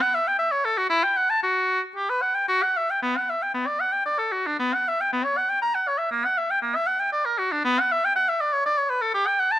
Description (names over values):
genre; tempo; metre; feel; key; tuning
classical, baroque-style fantasia for unaccompanied oboe; 110-124 BPM; 3/4; rubato; B minor; A4 = 444 Hz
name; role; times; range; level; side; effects
bright oboe; solo; 0.0-9.6 s; A#3 to A#5; -21 LUFS; equal; none
room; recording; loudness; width
moderate stone room reverb, RT60 1.3 s; minimal, uncompressed stereo recording; -21 LUFS; side -13 dB against mid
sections
0.0-3.0 A section; 3.0-9.6 A section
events
none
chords
none